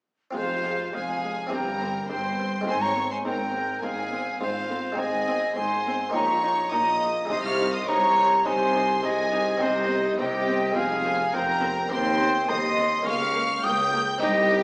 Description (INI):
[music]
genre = classical, baroque-style concerto movement with solo episodes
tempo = 104 BPM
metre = 4/4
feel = straight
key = F minor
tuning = A4 = 440 Hz
[part]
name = rich studio violin section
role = melody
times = 0.3-14.6 s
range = Eb5 to G6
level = -36 LUFS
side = equal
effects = none
[part]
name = silver concert flute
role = melody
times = 0.3-14.5 s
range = C5 to Eb6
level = -27 LUFS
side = equal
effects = none
[part]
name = warm chamber violin section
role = second line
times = 0.3-14.6 s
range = Eb4 to G5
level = -34 LUFS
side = equal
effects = none
[part]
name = buff-stop harpsichord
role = accompaniment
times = 0.3-14.6 s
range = C2 to Ab4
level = -37 LUFS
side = equal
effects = none
[part]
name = warm chamber cello section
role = bass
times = 0.3-14.6 s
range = C2 to C3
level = -34 LUFS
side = equal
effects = none
[part]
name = warm studio double bass section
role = bass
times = 0.3-14.6 s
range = F1 to Eb2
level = -37 LUFS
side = equal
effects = none
[part]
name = dark chamber viola section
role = accompaniment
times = 0.4-14.6 s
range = Ab3 to Eb4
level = -37 LUFS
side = equal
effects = none
[sound]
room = wet recital hall reverb, RT60 1.5 s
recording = recorded in a church or concert hall, small speaker sound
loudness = -25 LUFS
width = mono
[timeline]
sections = 0.3-14.6 A section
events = none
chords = 0.3 Fm; 1.5 C7/G; 2.7 Fm/Ab; 5.0 Ab; 6.1 Eb7/Bb; 7.3 Ab/C; 9.6 Cm; 10.8 Fm; 11.9 Cm/Eb; 13.1 Bbm/Db